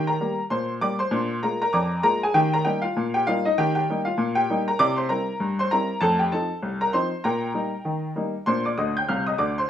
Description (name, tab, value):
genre	ragtime piano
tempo	98 BPM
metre	2/4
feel	swing 58% on 16ths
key	Eb major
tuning	A4 = 440 Hz
part	clear upright piano	solo	0.0-9.7 s	C2 to G6	-21 LUFS	left 1 dB	none
room	moderate studio reverb, RT60 0.7 s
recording	none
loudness	-21 LUFS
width	side -10 dB against mid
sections	0.0-9.7 A section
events	upright piano fill 8.8-9.7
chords	0.0 Eb; 1.1 Bb7; 2.3 Eb; 4.8 C7; 6.0 F7; 7.2 Eb/Bb; 8.5 Bb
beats	0.51 | 1.12 1.73 | 2.35 2.96 | 3.57 4.18 | 4.79 5.40 | 6.01 6.62 | 7.23 7.85 | 8.46 9.07 | 9.69